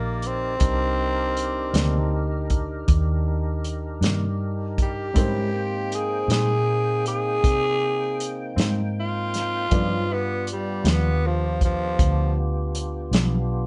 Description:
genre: slow blues.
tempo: 53 BPM (dotted quarters).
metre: 12/8.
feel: straight.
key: C minor.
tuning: A4 = 440 Hz.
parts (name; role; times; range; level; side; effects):
growling tenor saxophone; melody; 0.0-12.4 s; F3 to Ab4; -28 LUFS; equal; none.
tonewheel organ; sustained chords; 0.0-13.7 s; F#3 to G5; -35 LUFS; equal; slow rotary speaker, overdrive, chorus vibrato.
vintage muted fingered electric bass; bass; 0.0-13.7 s; Bb1 to C3; -28 LUFS; equal; none.
warm soul drum kit; drums; 0.2-13.3 s; hi-hat, kick drum, snare drum; -25 LUFS; equal; none.
mellow electric guitar; accompaniment; 1.7-13.4 s; G2 to Eb4; -30 LUFS; equal; tremolo.
warm upright piano; accompaniment; 5.2-13.7 s; F4 to G5; -38 LUFS; equal; none.
room: light reverb.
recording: band playing live in one room, nothing above 10.6 kHz.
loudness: -24 LUFS.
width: mono.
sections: 0.0-13.7 A section.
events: tenor saxophone solo 0.0-13.7.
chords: 0.0 Cm9; 5.2 Abmaj7; 9.7 G7.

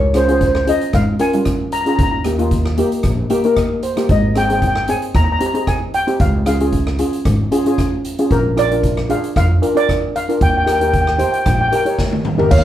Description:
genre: calypso.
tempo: 114 BPM.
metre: 4/4.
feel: swing 53% on 16ths.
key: unclear.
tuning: A4 = 440 Hz.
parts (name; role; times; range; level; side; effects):
upright bass; bass; 0.0-12.6 s; Ab1 to F2; -18 LUFS; right 1 dB; none.
steel pan; accompaniment; 0.1-12.5 s; G3 to G5; -18 LUFS; left 1 dB; none.
street-band drum kit; drums; 0.1-12.6 s; crash cymbal, hi-hat, kick drum, rim click, snare drum, toms; -20 LUFS; equal; none.
steel pan; melody; 0.2-12.6 s; Bb4 to Bb5; -18 LUFS; equal; none.
room: wet studio reverb, RT60 0.6 s.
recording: heard from further back in the room.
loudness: -14 LUFS.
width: side -12 dB against mid.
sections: 0.0-12.5 A section.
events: steel pan fill 3.0-4.1; drum fill 12.0-12.5.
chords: 0.0 Db; 2.0 Eb; 4.1 Ab; 6.2 Db; 8.3 Bb7; 10.4 Eb7.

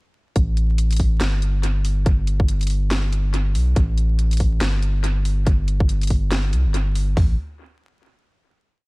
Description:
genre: deep dubstep.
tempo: 141 BPM.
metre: 4/4.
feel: swing 58% on 16ths, half-time.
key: unclear.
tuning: A4 = 442 Hz.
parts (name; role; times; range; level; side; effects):
soft dub sub bass; bass; 0.4-7.4 s; G1 to C2; -19 LUFS; equal; none.
garage drum kit; drums; 0.4-7.3 s; hi-hat, kick drum, toms; -18 LUFS; equal; none.
garage drum kit; drums; 0.4-7.1 s; handclaps, hi-hat, snare drum; -28 LUFS; equal; analog delay.
room: digital ambience.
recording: echo-heavy mix, vinyl crackle.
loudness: -18 LUFS.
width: side -26 dB against mid.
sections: 0.4-7.2 drop; 7.2-8.9 final note.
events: drop 0.4-7.2.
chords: none.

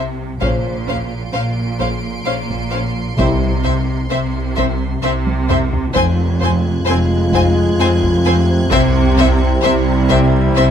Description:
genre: cinematic, suspense film score.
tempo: 65 BPM.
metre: 3/4.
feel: straight.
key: unclear.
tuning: A4 = 440 Hz.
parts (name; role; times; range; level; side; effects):
rich chamber violin section; melody; 0.0-10.6 s; E5 to Ab5; -23 LUFS; left 4 dB; none.
clear studio violin section; second line; 0.0-10.6 s; C5; -23 LUFS; left 1 dB; none.
rich chamber viola section; accompaniment; 0.0-10.6 s; C4 to Db4; -25 LUFS; equal; none.
folk marimba with soft mallets; riff; 0.0-10.7 s; F2 to C3; -21 LUFS; left 4 dB; none.
warm chamber cello section; bass; 0.0-10.7 s; F2 to C3; -22 LUFS; right 5 dB; none.
warm chamber double bass section; bass; 0.0-10.7 s; F1 to C2; -20 LUFS; right 2 dB; none.
clear trombone section; sustained chords; 0.4-10.7 s; C3 to Ab3; -22 LUFS; right 4 dB; none.
mellow French horn section; sustained chords; 0.4-10.7 s; C4 to C5; -20 LUFS; left 2 dB; none.
taiko ensemble; drums; 0.4-10.7 s; none; -24 LUFS; equal; none.
clear chamber violin section; texture; 0.4-10.7 s; C6 to D7; -31 LUFS; right 1 dB; none.
timpani; percussion; 3.2-4.5 s; C3; -24 LUFS; left 2 dB; none.
room: moderate scoring stage reverb, RT60 1.5 s.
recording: close, detailed microphones.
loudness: -13 LUFS.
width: side -8 dB against mid.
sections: 0.0-10.7 A section.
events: drum fill 5.3-5.9.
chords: 0.4 Bbmadd9; 3.2 C; 5.9 Fm; 8.7 C.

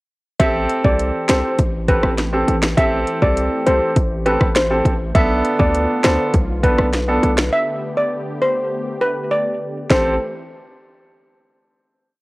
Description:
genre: dancehall.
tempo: 101 BPM.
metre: 4/4.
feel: straight.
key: A minor.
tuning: A4 = 440 Hz.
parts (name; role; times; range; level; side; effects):
steel pan; melody; 0.4-10.2 s; B4 to E5; -20 LUFS; equal; cassette tape, analog delay.
warm grand piano; accompaniment; 0.4-10.1 s; B3 to A4; -20 LUFS; right 1 dB; sidechain pumping, cassette tape.
warm analog pad; sustained chords; 0.4-10.2 s; D3 to G4; -28 LUFS; left 1 dB; chorus, sidechain pumping, cassette tape.
hard-hitting 808-style bass; bass; 0.4-10.2 s; A1 to D2; -21 LUFS; equal; none.
afro-pop drum kit; drums; 0.4-10.0 s; finger snaps, hi-hat, kick drum, rim click, snare drum; -19 LUFS; equal; none.
room: light reverb, digital ambience.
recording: home recording on cassette.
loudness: -15 LUFS.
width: side -22 dB against mid.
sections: 0.4-9.9 chorus; 9.9-12.2 final chord.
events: break 7.5-9.9.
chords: 0.4 Am7; 5.2 Bm7b5; 7.5 Gadd9; 9.9 Am7.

